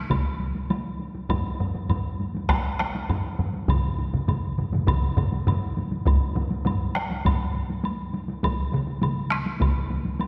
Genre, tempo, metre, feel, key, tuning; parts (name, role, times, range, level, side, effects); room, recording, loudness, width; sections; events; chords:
japanese traditional, taiko drum ensemble; 101 BPM; 4/4; straight
taiko ensemble; percussion; 0.1-10.3 s; -32 LUFS; equal
taiko ensemble; percussion; 0.1-9.8 s; -31 LUFS; equal
taiko ensemble; percussion; 0.1-9.8 s; -30 LUFS; equal
woodblock; percussion; 0.1-10.3 s; -38 LUFS; equal
taiko ensemble; percussion; 1.3-7.4 s; -30 LUFS; equal
wet concert hall reverb, RT60 2.3 s; -26 LUFS; mono
0.0-10.3 A section